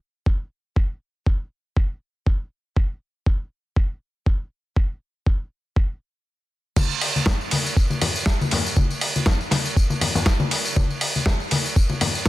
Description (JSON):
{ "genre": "nu-disco", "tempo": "120 BPM", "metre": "4/4", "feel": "swing 54% on 16ths", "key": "none", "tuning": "none", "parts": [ { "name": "electronic kick drum", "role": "drums", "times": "0.3-12.3 s", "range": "none", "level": "-19 LUFS", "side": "equal", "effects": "none" }, { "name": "dusty soul sampler-style drum kit", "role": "drums", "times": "6.8-12.3 s", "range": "crash cymbal, hi-hat, ride cymbal, snare drum", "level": "-23 LUFS", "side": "right 1 dB", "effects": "low-pass filter on cymbals, low-pass filter on hats, low-pass filter on snare" }, { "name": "congas and tambourine", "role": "percussion", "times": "6.8-12.3 s", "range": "none", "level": "-24 LUFS", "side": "left 3 dB", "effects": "none" } ], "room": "little or no reverb", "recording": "dense, heavily limited modern master", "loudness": "-20 LUFS", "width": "side -17 dB against mid", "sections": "0.0-6.8 A section; 6.8-12.3 B section", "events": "stop 6.3-6.8; drop 6.8-12.3", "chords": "none", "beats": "0.27 | 0.77 1.26 1.76 2.27 | 2.77 3.27 3.77 4.26 | 4.76 5.26 5.76 6.26 | 6.76 7.26 7.76 8.27 | 8.77 9.27 9.77 10.27 | 10.77 11.27 11.77 12.27" }